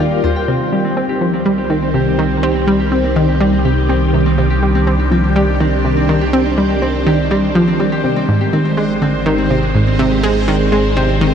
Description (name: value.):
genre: ambient, sequencer-driven space music.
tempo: 123 BPM.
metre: 4/4.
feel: straight.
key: C minor.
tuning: A4 = 442 Hz.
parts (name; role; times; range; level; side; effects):
phased string machine; sustained chords; 0.0-11.3 s; Eb3 to Bb4; -17 LUFS; equal; ensemble chorus, phaser.
Celtic harp; arpeggios; 0.0-11.3 s; C4 to G5; -22 LUFS; moving between left 4 dB and right 5 dB; auto-pan, low-pass filter, analog delay.
analog pluck; riff; 0.0-11.3 s; Eb2 to C4; -16 LUFS; equal; chorus, analog delay.
round analog bass; bass; 0.0-11.3 s; Eb1 to C2; -19 LUFS; equal; tube saturation.
bubbling stepped-filter texture; texture; 0.5-11.3 s; C5; -30 LUFS; equal; chorus, built-in reverb.
room: moderate huge ambient reverb, RT60 8.2 s.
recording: none.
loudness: -12 LUFS.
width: side -8 dB against mid.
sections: 0.5-11.3 A section.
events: fade-in on synth texture 0.5-11.3.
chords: 0.5 Cm; 8.3 Ab.